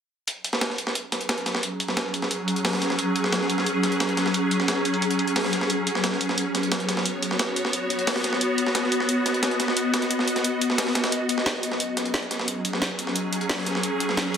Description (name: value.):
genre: dark technical drum and bass.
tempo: 177 BPM.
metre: 4/4.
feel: straight.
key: unclear.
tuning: A4 = 440 Hz.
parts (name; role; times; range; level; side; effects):
swarming drone; sustained chords; 1.5-14.4 s; F#3 to D#5; -24 LUFS; equal; built-in reverb.
breakbeat sampler-style drum kit; drums; 0.3-14.4 s; hi-hat, snare drum; -27 LUFS; equal; high-pass filter on hats, small room ambience, high-pass filter on snare, high-pass filter on room.
drum and bass drum kit; drums; 0.3-14.4 s; hi-hat, snare drum; -28 LUFS; equal; overdrive, low-pass filter on hats, small room ambience, low-pass filter on snare.
room: moderate plate reverb, RT60 1.6 s.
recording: dense, heavily limited modern master.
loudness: -22 LUFS.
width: side -7 dB against mid.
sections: 0.3-14.4 A section.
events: none.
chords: 0.3 F#5; 5.7 B; 11.1 F#5.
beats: | 0.28 0.61 0.95 1.29 | 1.63 1.97 2.31 2.65 | 2.99 3.33 3.67 4.00 | 4.34 4.68 5.02 5.36 | 5.70 6.04 6.38 6.72 | 7.05 7.39 7.73 8.07 | 8.41 8.75 9.09 9.43 | 9.77 10.11 10.45 10.78 | 11.12 11.46 11.80 12.14 | 12.48 12.82 13.16 13.50 | 13.84 14.17.